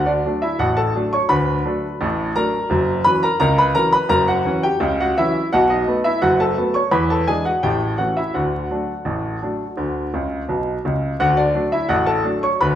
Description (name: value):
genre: ragtime piano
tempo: 85 BPM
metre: 2/4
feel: straight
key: D major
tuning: A4 = 440 Hz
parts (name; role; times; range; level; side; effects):
- clear baby grand piano; solo; 0.0-12.8 s; F#1 to C#6; -16 LUFS; equal; none
room: wet large studio reverb, RT60 1.4 s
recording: band playing live in one room, vinyl crackle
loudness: -17 LUFS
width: side -10 dB against mid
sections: 0.0-11.2 A section; 11.2-12.8 A section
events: grand piano fill 10.1-11.2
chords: 0.0 D; 2.7 F#7; 5.5 B7; 6.9 E7; 7.6 A7; 8.3 D